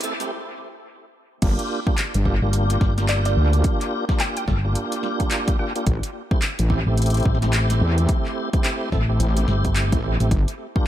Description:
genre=glitch hop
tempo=108 BPM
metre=4/4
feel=swing 60% on 16ths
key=G dorian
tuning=A4 = 440 Hz
part: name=tonewheel organ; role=stabs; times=0.0-10.9 s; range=A3 to A4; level=-26 LUFS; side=right 1 dB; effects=overdrive, chorus vibrato, slow rotary speaker, vintage 12-bit sampler grit, sidechain pumping, analog delay
part: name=pop drum kit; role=drums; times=0.0-10.6 s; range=crash cymbal, handclaps, hi-hat, snare drum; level=-29 LUFS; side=equal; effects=overdrive, analog delay
part: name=wobble bass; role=bass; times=1.4-10.5 s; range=G1 to E2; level=-19 LUFS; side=equal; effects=chorus, overdrive
part: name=electronic kick drum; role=drums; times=1.4-10.8 s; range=none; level=-22 LUFS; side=equal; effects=overdrive
part: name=hollow-body short-scale fingered electric bass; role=bass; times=2.4-10.3 s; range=G1 to A1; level=-20 LUFS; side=equal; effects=none
part: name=woody wave-folded pluck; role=melody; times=3.1-5.9 s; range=D5 to G5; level=-31 LUFS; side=equal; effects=analog chorus, analog delay
room=digital ambience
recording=echo-heavy mix, high-pass filter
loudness=-19 LUFS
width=side -12 dB against mid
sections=0.0-1.4 A section; 1.4-10.9 B section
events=build-up 0.0-1.4; break 0.3-1.4; drop 1.4-10.9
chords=0.0 Am7; 1.4 Gm7; 5.9 Am7; 10.3 Gm7

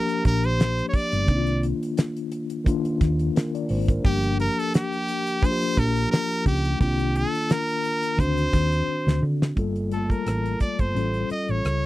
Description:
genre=lush 1970s-style soul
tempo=87 BPM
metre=4/4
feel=swing 54% on 16ths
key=G minor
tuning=A4 = 437 Hz
part: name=brilliant trumpet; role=melody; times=0.0-11.9 s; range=G4 to Eb5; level=-27 LUFS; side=right 1 dB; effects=none
part: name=mellow tine electric piano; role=accompaniment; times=0.0-11.9 s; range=Eb3 to A5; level=-27 LUFS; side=left 3 dB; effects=medium stereo tremolo
part: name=damped 70s drum kit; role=drums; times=0.1-11.8 s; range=hi-hat, kick drum, rim click, snare drum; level=-22 LUFS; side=right 1 dB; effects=none
part: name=hollow-body short-scale fingered electric bass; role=bass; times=0.3-11.9 s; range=G1 to D3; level=-24 LUFS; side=right 1 dB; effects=none
room=little or no reverb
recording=dry, close 1970s-style studio recording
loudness=-21 LUFS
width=side -16 dB against mid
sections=0.0-9.6 A section; 9.6-11.9 B section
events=drum fill 8.9-9.6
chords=0.0 Gm7; 1.3 Cm11; 4.0 Gm7; 6.8 Cm11; 8.2 D7b9; 9.6 Gm9; 11.0 Aaug7

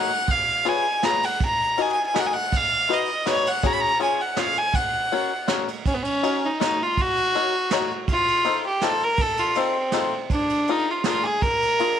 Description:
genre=musette waltz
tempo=162 BPM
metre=3/4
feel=straight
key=F# major, Eb minor from 5.9 s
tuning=A4 = 441 Hz
part: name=clear violin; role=melody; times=0.0-12.0 s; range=Cb4 to B5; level=-22 LUFS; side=equal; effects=none
part: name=bluegrass banjo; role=accompaniment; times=0.0-12.0 s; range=C#4 to D#5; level=-26 LUFS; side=left 10 dB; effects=none
part: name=vintage brush drum kit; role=drums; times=0.3-11.9 s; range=kick drum, ride cymbal, snare drum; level=-28 LUFS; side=right 4 dB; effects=none
room=light reverb, small room ambience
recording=1960s-style stereo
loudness=-20 LUFS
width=side -9 dB against mid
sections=0.0-5.9 A section; 5.9-12.0 B section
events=none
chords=0.3 C#7; 1.4 D#m; 2.5 B; 3.6 C#sus4; 4.0 C#; 4.7 F#; 5.9 Ebm7; 8.1 F7; 10.3 Bb7

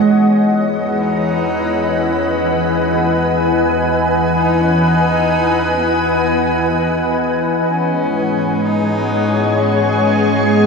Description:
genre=ambient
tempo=free time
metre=none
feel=none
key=E major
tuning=A4 = 444 Hz
part: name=warm cello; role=melody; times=0.0-10.7 s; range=B3 to D#4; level=-25 LUFS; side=left 1 dB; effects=diffuse ambient delay
part: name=soft additive organ-like pad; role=sustained chords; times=0.0-10.7 s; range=E3 to G#5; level=-13 LUFS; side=left 1 dB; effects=ensemble chorus, built-in reverb
part: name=warm sub bass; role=bass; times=0.0-10.7 s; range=E2 to G#2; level=-28 LUFS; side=equal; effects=none
part: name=bowed-like drone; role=drone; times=0.0-10.7 s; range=E3 to B3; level=-30 LUFS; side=left 1 dB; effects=none
room=wet cathedral reverb, RT60 6.2 s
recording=in a vast, echoing space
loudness=-13 LUFS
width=side -4 dB against mid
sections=0.1-10.7 A section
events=fade-in on sub bass 0.1-10.7; fade-in on cello 0.1-10.7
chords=0.1 Emaj7; 7.7 G#7sus4

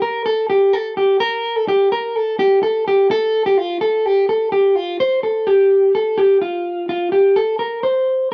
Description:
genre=indie pop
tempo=127 BPM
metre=4/4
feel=straight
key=unclear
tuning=A4 = 440 Hz
part: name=electric guitar at the edge of break-up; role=solo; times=0.0-8.3 s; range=F4 to C5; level=-17 LUFS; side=equal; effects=none
room=moderate studio reverb, RT60 0.6 s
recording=worn, warbling old tape, cassette tape, warbly pitch drift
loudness=-17 LUFS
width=mono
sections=0.0-5.0 A section; 5.0-6.9 B section; 6.9-8.3 C section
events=none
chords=none

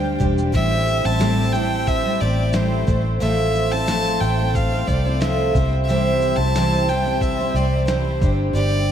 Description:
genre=acoustic pop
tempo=90 BPM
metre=4/4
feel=straight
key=C major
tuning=A4 = 440 Hz
part: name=warm violin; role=melody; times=0.0-8.9 s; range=C5 to A5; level=-24 LUFS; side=equal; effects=none
part: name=picked twelve-string acoustic guitar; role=accompaniment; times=0.0-8.9 s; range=A2 to C5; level=-21 LUFS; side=equal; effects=none
part: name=vintage muted fingered electric bass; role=bass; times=0.0-8.9 s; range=E1 to D2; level=-21 LUFS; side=equal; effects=none
part: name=dusty soul sampler-style drum kit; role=drums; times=0.2-8.9 s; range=kick drum, shaker, snare drum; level=-26 LUFS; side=equal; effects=none
room=wet cathedral reverb, RT60 6.0 s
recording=in a vast, echoing space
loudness=-17 LUFS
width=side -9 dB against mid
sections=0.0-8.9 A section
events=none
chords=0.0 Gsus4; 0.5 Am7; 2.9 Fmaj7/A; 5.5 C; 8.2 Gsus4

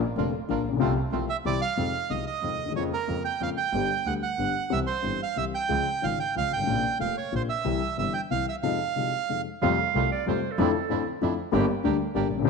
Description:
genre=tango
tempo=185 BPM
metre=3/4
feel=rubato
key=F minor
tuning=A4 = 440 Hz
part: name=dark upright piano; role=accompaniment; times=0.2-12.5 s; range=F1 to G4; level=-28 LUFS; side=left 8 dB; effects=none
part: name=bandoneon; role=stabs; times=0.2-1.6, 9.6-12.5 s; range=F3 to G4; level=-34 LUFS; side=right 10 dB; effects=none
part: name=clear double bass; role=bass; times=0.2-12.5 s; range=F1 to F2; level=-31 LUFS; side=right 4 dB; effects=none
part: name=bandoneon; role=melody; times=1.3-9.4 s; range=Bb4 to G5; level=-28 LUFS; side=right 8 dB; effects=none
part: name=warm clarinet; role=second line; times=9.6-11.1 s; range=A4 to F5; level=-29 LUFS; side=right 11 dB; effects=none
room=moderate echo chamber reverb, RT60 2.0 s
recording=1960s-style stereo with parts hard left and right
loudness=-24 LUFS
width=side -4 dB against mid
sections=0.0-1.8 A section; 1.8-9.6 B section; 9.6-12.5 A section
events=none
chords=0.0 Bb; 0.8 F/C; 1.5 C; 1.8 Fm7; 2.8 Bbm7/F; 3.7 G; 4.7 C; 5.7 Db; 6.7 Bbsus2; 7.7 C; 8.6 Fm7; 9.6 Fadd9; 10.6 Dmadd9/F; 11.5 Gm

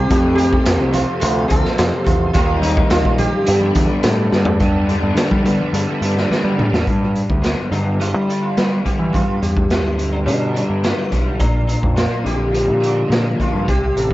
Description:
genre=psychedelic rock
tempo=106 BPM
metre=4/4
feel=straight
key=G mixolydian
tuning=A4 = 440 Hz
part: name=sitar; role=melody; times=0.0-14.1 s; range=B3 to A4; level=-22 LUFS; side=right 1 dB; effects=dub echo
part: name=bright tonewheel organ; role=sustained chords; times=0.0-6.8 s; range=G4 to C6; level=-29 LUFS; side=right 5 dB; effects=none
part: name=overdriven semi-hollow guitar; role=riff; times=0.0-14.1 s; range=F2 to Eb4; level=-20 LUFS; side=left 1 dB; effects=rotary speaker, dub echo
part: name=growling picked electric bass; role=bass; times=0.0-14.1 s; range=A1 to G3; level=-20 LUFS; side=equal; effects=overdrive
part: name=raw garage drum kit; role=drums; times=0.1-14.1 s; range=hi-hat, kick drum, snare drum, toms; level=-20 LUFS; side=equal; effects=dub echo
part: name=congas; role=percussion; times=0.9-6.7 s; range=none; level=-28 LUFS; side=right 1 dB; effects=none
room=light reverb, small room reverb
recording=echo-heavy mix, nothing above 7.7 kHz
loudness=-15 LUFS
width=side -16 dB against mid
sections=0.0-4.6 A section; 4.6-6.9 B section; 6.9-14.1 C section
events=drum fill 4.3, 6.3-6.9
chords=0.1 F; 2.4 Ebadd9; 3.5 Gadd9; 6.9 G; 11.4 Bb

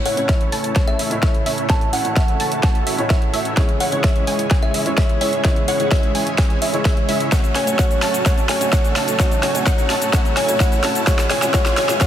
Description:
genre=EDM, festival progressive house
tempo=128 BPM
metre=4/4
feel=straight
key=F# minor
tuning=A4 = 440 Hz
part: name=dark baby grand piano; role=accompaniment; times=0.0-12.1 s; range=A2 to C#5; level=-27 LUFS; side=equal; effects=sidechain pumping, dub echo
part: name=lush unison pad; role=sustained chords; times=0.0-12.1 s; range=B2 to A4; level=-29 LUFS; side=equal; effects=chorus, phaser, sidechain pumping
part: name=saturated sub bass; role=bass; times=0.0-12.1 s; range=none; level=barely audible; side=none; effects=none
part: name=riser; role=sound effects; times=0.0-12.1 s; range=none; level=-33 LUFS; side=right 1 dB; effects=none
part: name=kalimba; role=melody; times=0.1-12.0 s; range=C#5 to A5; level=-24 LUFS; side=equal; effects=dub echo
part: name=wide unison pluck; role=arpeggios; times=0.1-12.1 s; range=E5 to A5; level=-28 LUFS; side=right 1 dB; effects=sidechain pumping, dub echo
part: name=dense compressed supersaw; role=riff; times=0.1-12.1 s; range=G#3 to A5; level=-26 LUFS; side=right 1 dB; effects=sidechain pumping, low-pass filter, dub echo
part: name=big-room dance drum kit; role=drums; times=0.1-12.1 s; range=hi-hat, shaker, snare drum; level=-24 LUFS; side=equal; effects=overdrive, high-pass filter on hats, high-pass filter on snare, high-pass filter on perc
part: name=electronic kick drum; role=drums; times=0.3-12.1 s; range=none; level=-17 LUFS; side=equal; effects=overdrive
room=moderate lush hall reverb, RT60 1.9 s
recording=dense, heavily limited modern master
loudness=-15 LUFS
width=side -10 dB against mid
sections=0.0-12.1 A section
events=build-up 0.0-12.1; drum fill 0.0-12.1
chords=0.0 A; 3.6 C#m; 7.3 F#m; 11.1 E

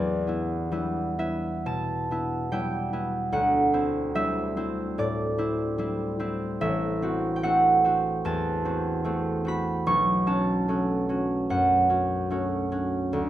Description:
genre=classical, solo harp piece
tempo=74 BPM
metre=4/4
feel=rubato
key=unclear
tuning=A4 = 438 Hz
part: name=concert harp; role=solo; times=0.0-13.3 s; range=A1 to C#6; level=-24 LUFS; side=right 1 dB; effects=none
room=moderate recital hall reverb, RT60 1.5 s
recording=none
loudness=-24 LUFS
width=side -13 dB against mid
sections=0.0-13.3 A section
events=none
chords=0.0 Em7; 3.3 D11; 6.6 Am6; 9.9 Bsus2

